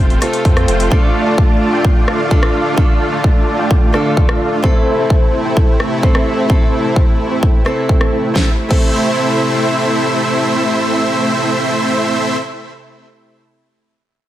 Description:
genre	EDM, festival progressive house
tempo	129 BPM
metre	4/4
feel	straight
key	A minor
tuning	A4 = 439 Hz
part	fingerpicked acoustic archtop guitar	accompaniment	0.0-12.4 s	A3 to A4	-20 LUFS	equal	sidechain pumping, digital delay
part	supersaw pad	sustained chords	0.0-12.0 s	C3 to F4	-21 LUFS	equal	vintage 12-bit sampler grit, sidechain pumping
part	dense compressed supersaw	riff	0.0-12.4 s	A3 to A5	-17 LUFS	right 1 dB	sidechain pumping, low-pass filter, digital delay
part	saturated sub bass	bass	0.0-0.9 s	F1 to F2	-18 LUFS	equal	sidechain pumping
part	big-room dance drum kit	drums	0.1-8.8 s	crash cymbal, hi-hat, rim click, snare drum	-22 LUFS	left 1 dB	none
part	electronic kick drum	drums	0.5-8.8 s	none	-12 LUFS	equal	none
room	light reverb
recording	none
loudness	-12 LUFS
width	side -13 dB against mid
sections	0.0-8.4 A section; 8.4-12.1 B section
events	filter sweep on supersaw synth 0.0-8.4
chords	0.0 F; 0.9 Dm; 4.6 Am

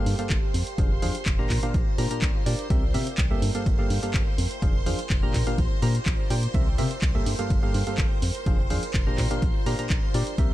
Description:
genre	piano house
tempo	125 BPM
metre	4/4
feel	straight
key	unclear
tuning	A4 = 441 Hz
part	string machine, violins	sustained chords	0.0-10.5 s	C5 to C6	-37 LUFS	equal	ensemble chorus, vintage 12-bit sampler grit, sidechain pumping
part	percussive organ stab	riff	0.0-10.5 s	G2 to Bb5	-30 LUFS	equal	chorus, sidechain pumping, dub echo
part	deep dark ambient pad	texture	0.0-10.5 s	F4 to G5	-38 LUFS	right 2 dB	chorus, built-in reverb, sidechain pumping
part	organ-like FM bass	bass	0.1-10.5 s	F1 to C3	-27 LUFS	equal	sidechain pumping
part	punchy analog drum machine	drums	0.1-10.5 s	handclaps, hi-hat	-33 LUFS	equal	none
part	electronic kick drum	drums	0.3-10.5 s	none	-25 LUFS	equal	none
room	little or no reverb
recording	echo-heavy mix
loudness	-22 LUFS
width	side -15 dB against mid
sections	0.0-10.5 A section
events	none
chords	0.0 Gm9; 0.5 Fm6; 1.5 Bb6; 2.7 C7; 3.4 Gm9; 4.4 Fm6; 5.3 Bb6; 6.5 C7; 7.3 Gm9; 8.2 Fm6; 9.2 Bb6

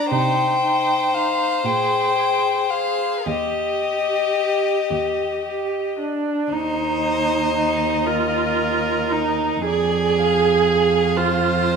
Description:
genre	classical, slow romantic movement for string quartet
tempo	38 BPM (dotted quarters)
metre	6/8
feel	uneven beats, rubato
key	Eb major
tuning	A4 = 440 Hz
part	clear violin	melody	0.0-11.8 s	D5 to Bb5	-23 LUFS	left 7 dB	none
part	clear violin	second line	0.0-11.8 s	G4 to D5	-24 LUFS	equal	none
part	rich viola	accompaniment	0.0-11.8 s	D4 to Ab4	-22 LUFS	right 4 dB	none
part	rich cello	bass	0.1-11.8 s	Eb2 to C3	-26 LUFS	right 6 dB	none
room	moderate recital hall reverb, RT60 1.5 s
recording	minimal, uncompressed stereo recording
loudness	-18 LUFS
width	side -6 dB against mid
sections	0.0-6.5 A section; 6.5-11.8 B section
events	none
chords	0.1 Cm; 1.6 Abmaj13/Bb; 3.3 Eb; 6.5 Eb5; 9.7 Fm6

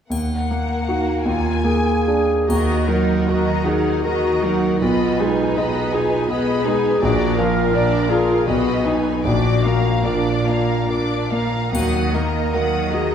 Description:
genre	classical, romantic movement for piano and orchestra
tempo	68-84 BPM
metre	3/4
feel	rubato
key	Eb minor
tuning	A4 = 441 Hz
part	clear concert grand piano	melody	0.1-13.1 s	Bb1 to Eb5	-20 LUFS	equal	none
part	rich studio violin section	second line	0.1-13.1 s	Bb3 to Ab5	-26 LUFS	left 2 dB	none
part	triangle	percussion	0.1-4.0, 11.7-13.1 s	none	-38 LUFS	left 2 dB	none
part	mellow clarinet	second line	1.3-13.1 s	Eb4 to Bb4	-23 LUFS	left 1 dB	none
part	warm studio violin section	melody	2.5-13.1 s	F5 to Eb6	-30 LUFS	left 4 dB	none
part	warm studio viola section	accompaniment	2.5-13.1 s	Gb3 to Gb4	-25 LUFS	right 1 dB	none
part	clear studio cello section	bass	2.5-13.1 s	Bb2 to Eb3	-26 LUFS	right 3 dB	none
room	wet scoring stage reverb, RT60 1.9 s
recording	heard from further back in the room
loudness	-16 LUFS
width	side -8 dB against mid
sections	0.1-2.5 A section; 2.5-13.1 B section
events	none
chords	0.1 Ebm; 1.3 Bb7/Eb; 2.5 Ebm; 4.8 Abm/Cb; 7.0 Bb; 8.5 Abm/Cb; 9.3 Bb; 11.7 Ebm

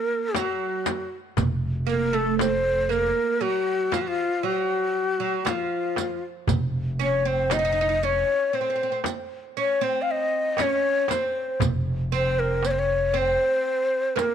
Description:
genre	Arabic maqam ensemble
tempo	117 BPM (eighths)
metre	10/8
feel	straight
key	F maqam hijaz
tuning	A4 = 440 Hz
part	breathy reedy ney	melody	0.0-14.3 s	F4 to F5	-23 LUFS	left 2 dB	none
part	oud	second line	0.0-14.3 s	F3 to Eb4	-30 LUFS	right 13 dB	none
part	darbuka	percussion	0.3-14.3 s	none	-30 LUFS	right 7 dB	none
part	frame drum	percussion	0.3-14.3 s	none	-30 LUFS	left 8 dB	none
part	riq	percussion	0.4-14.3 s	none	-33 LUFS	right 13 dB	none
part	upright bass	bass	1.4-13.3 s	F1	-27 LUFS	equal	none
room	light reverb, small room ambience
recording	1960s-style stereo with parts hard left and right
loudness	-22 LUFS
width	side -8 dB against mid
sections	0.0-14.3 A section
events	none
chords	none

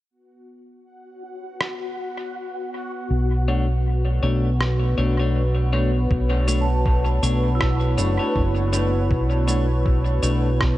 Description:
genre	ambient dub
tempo	80 BPM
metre	4/4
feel	swing 58% on 16ths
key	B minor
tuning	A4 = 441 Hz
part	warm analog pad	sustained chords	0.1-10.8 s	B3 to C#5	-28 LUFS	equal	chorus
part	bubbling stepped-filter texture	texture	0.1-6.1 s	F#4 to F#5	-34 LUFS	left 3 dB	chorus, built-in reverb
part	electronic rim click and cabasa	drums	1.6-10.8 s	none	-29 LUFS	right 1 dB	dub echo
part	fingered electric bass	bass	3.1-10.8 s	F#1 to B1	-20 LUFS	equal	none
part	clean electric guitar	stabs	3.5-10.5 s	A3 to C#5	-28 LUFS	left 4 dB	dub echo
part	electronic kick drum	drums	6.1-10.8 s	none	-23 LUFS	equal	none
part	vibraphone with hard mallets	arpeggios	6.6-10.8 s	E4 to A5	-29 LUFS	right 4 dB	low-pass filter, dub echo
room	light reverb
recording	nothing above 10.7 kHz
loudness	-19 LUFS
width	side -15 dB against mid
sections	0.1-6.1 A section; 6.1-10.8 B section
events	filter sweep on analog synth pad 0.1-6.1; filter sweep on vibraphone 6.1-10.8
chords	0.1 Bm9

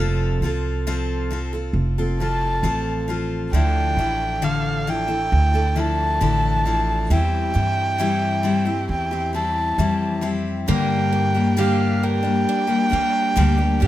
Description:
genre	folk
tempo	67 BPM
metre	4/4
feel	straight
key	G dorian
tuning	A4 = 440 Hz
part	picked steel-string acoustic guitar	accompaniment	0.0-13.9 s	G2 to A4	-23 LUFS	left 3 dB	none
part	upright bass	bass	0.0-13.9 s	F1 to G3	-22 LUFS	right 1 dB	none
part	dark erhu	melody	2.2-13.9 s	F5 to A5	-23 LUFS	right 1 dB	none
part	picked twelve-string acoustic guitar	arpeggios	10.7-13.9 s	Bb3 to G4	-27 LUFS	right 8 dB	none
room	little or no reverb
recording	close, detailed microphones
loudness	-18 LUFS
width	side -14 dB against mid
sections	0.0-10.7 A section; 10.7-13.9 B section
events	none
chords	0.0 F; 3.5 Dmadd9; 7.1 C/E; 10.7 Gm

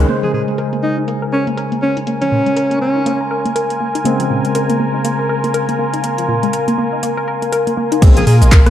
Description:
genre	deep house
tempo	121 BPM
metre	4/4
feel	swing 59% on 16ths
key	Bb minor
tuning	A4 = 440 Hz
part	barky tine electric piano	stabs	0.0-8.2 s	Db3 to C5	-21 LUFS	left 1 dB	overdrive, medium stereo tremolo, sidechain pumping, low-pass filter, ping-pong delay
part	round analog bass	bass	0.0-0.1, 8.0-8.7 s	Bb1 to Bb2	-11 LUFS	equal	tube saturation, sidechain pumping
part	warbly tape-like pad	texture	0.0-8.7 s	Db4 to C6	-25 LUFS	equal	chorus, built-in reverb, sidechain pumping
part	warm analog pad	sustained chords	0.1-8.7 s	Bb3 to Ab5	-22 LUFS	equal	chorus, sidechain pumping
part	analog pluck	arpeggios	0.1-8.7 s	Bb2 to Bb4	-20 LUFS	left 1 dB	chorus, sidechain pumping, ping-pong delay
part	deep house drum kit	drums	0.1-8.7 s	crash cymbal, handclaps, hi-hat, rim click, shaker	-24 LUFS	equal	low-pass filter on hats, studio reverb, low-pass filter on snare, low-pass filter on cymbals, low-pass filter on perc
part	mellow alto saxophone	melody	0.2-3.2, 8.2-8.4 s	Db4 to Ab4	-18 LUFS	equal	digital delay
part	big rock drum kit	drums	8.0-8.7 s	hi-hat, snare drum	-32 LUFS	right 1 dB	none
part	electronic kick drum	drums	8.0-8.6 s	none	-7 LUFS	equal	studio reverb
room	moderate plate reverb, RT60 2.2 s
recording	dark, warm production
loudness	-13 LUFS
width	side -11 dB against mid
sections	0.1-8.0 A section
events	band accent 0.0; filter sweep on drum 0.1-8.0; filter sweep on tine electric piano 0.1-8.0; filter sweep on synth arpeggio sound 0.1-8.0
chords	0.1 Bbm7

